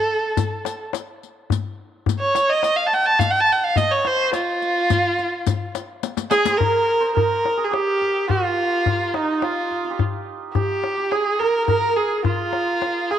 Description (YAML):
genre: Persian modal ensemble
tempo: 106 BPM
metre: 3/4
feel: straight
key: F dastgah homayun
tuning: A4 = 440 Hz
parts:
  - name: clear kamancheh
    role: melody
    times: 0.0-13.2 s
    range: Eb4 to A5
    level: -19 LUFS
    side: right 1 dB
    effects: slapback echo
  - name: riq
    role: percussion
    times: 0.4-6.6 s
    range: none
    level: -29 LUFS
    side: left 12 dB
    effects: none
  - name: tombak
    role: percussion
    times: 0.4-13.2 s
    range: none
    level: -24 LUFS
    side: left 5 dB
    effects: none
  - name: santur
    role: second line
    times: 6.3-13.2 s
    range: Eb4 to C5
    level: -26 LUFS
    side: right 8 dB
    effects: none
room: moderate spring reverb, RT60 2.6 s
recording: 1960s-style stereo with parts hard left and right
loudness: -18 LUFS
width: side -10 dB against mid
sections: 0.0-6.6 A section; 6.6-13.2 B section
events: drum fill 6.0-6.6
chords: none